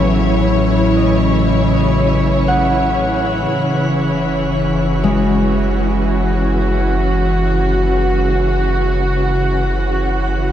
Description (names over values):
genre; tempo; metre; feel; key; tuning
ambient; 59 BPM; 4/4; straight; unclear; A4 = 438 Hz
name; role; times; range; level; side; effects
rich studio string section; sustained chords; 0.0-10.5 s; A2 to C#5; -17 LUFS; right 1 dB; none
concert harp; arpeggios; 0.0-8.9 s; F#3 to D#6; -20 LUFS; left 2 dB; tape echo
warm sub bass; bass; 0.0-10.5 s; F#1 to A1; -19 LUFS; equal; none
bowed-like drone; drone; 0.0-10.5 s; C#3; -23 LUFS; right 1 dB; built-in reverb
room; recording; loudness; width
wet shimmer reverb, RT60 7.7 s; dark, warm production; -13 LUFS; side -10 dB against mid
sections
0.0-10.5 A section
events
none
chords
0.0 A; 3.5 F#5